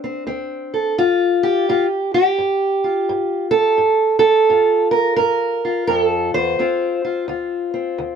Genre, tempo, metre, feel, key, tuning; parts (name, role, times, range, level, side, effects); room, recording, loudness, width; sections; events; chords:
acoustic country blues, solo or duo; 86 BPM; 4/4; swing 64% on 8ths; A4 = 438 Hz
fingerpicked steel-string acoustic guitar; solo; 0.0-8.2 s; D2 to C5; -16 LUFS; right 1 dB
light reverb; dark, warm production; -15 LUFS; side -7 dB against mid
0.0-8.2 A section
0.0 D7(no3); 1.0 Gm7; 6.6 Dm7